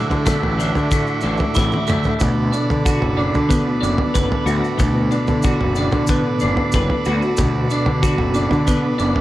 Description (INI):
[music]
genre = psychedelic rock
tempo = 93 BPM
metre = 4/4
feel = straight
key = unclear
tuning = A4 = 439 Hz
[part]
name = combo organ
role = sustained chords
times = 0.0-9.2 s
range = F#4 to D6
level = -27 LUFS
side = right 5 dB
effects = none
[part]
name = twelve-string electric guitar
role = riff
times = 0.0-9.2 s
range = D2 to B4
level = -20 LUFS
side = equal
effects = rotary speaker
[part]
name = bowed-like drone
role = drone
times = 0.0-9.2 s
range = D2 to A2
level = -30 LUFS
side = left 1 dB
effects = none
[part]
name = fuzz picked electric bass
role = bass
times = 0.1-9.1 s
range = F#1 to D3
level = -22 LUFS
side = equal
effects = overdrive
[part]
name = cloth-damped thuddy drum kit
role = drums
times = 0.1-9.2 s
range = kick drum, snare drum, toms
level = -21 LUFS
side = equal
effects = none
[part]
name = maracas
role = percussion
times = 0.1-9.1 s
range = none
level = -36 LUFS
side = left 3 dB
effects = dub echo
[sound]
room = light reverb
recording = echo-heavy mix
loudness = -16 LUFS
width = side -15 dB against mid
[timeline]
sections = 0.0-9.2 A section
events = drum fill 1.6-2.2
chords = 0.0 Dadd9; 2.2 Bm7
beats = 0.26 0.91 1.55 | 2.20 2.85 3.50 4.15 | 4.80 5.44 6.09 6.74 | 7.38 8.03 8.68